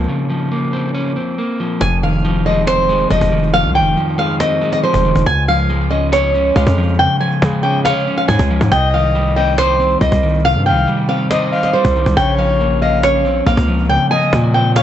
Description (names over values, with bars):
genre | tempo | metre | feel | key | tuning
hip hop, trap | 139 BPM | 4/4 | half-time | F minor | A4 = 439 Hz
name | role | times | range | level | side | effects
electric guitar at the edge of break-up | accompaniment | 0.0-14.8 s | F2 to Db5 | -18 LUFS | equal | spring reverb
hard-hitting 808-style bass | bass | 0.0-14.8 s | F1 to Db3 | -17 LUFS | equal | none
cajon | drums | 0.0-14.8 s | none | -24 LUFS | equal | none
flamenco guitar | melody | 1.8-14.8 s | C5 to Ab5 | -16 LUFS | equal | none
breathy flute-like synth lead | second line | 8.7-14.8 s | Db5 to G5 | -20 LUFS | left 4 dB | chorus, digital delay
room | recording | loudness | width
light reverb, small room ambience | nothing above 8.0 kHz | -12 LUFS | side -10 dB against mid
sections
0.0-1.8 A section; 1.8-14.8 B section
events
break 0.0-1.8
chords
0.0 Bbmadd9; 1.8 Fm7; 5.3 Db; 8.7 Cm; 12.2 Bbmadd9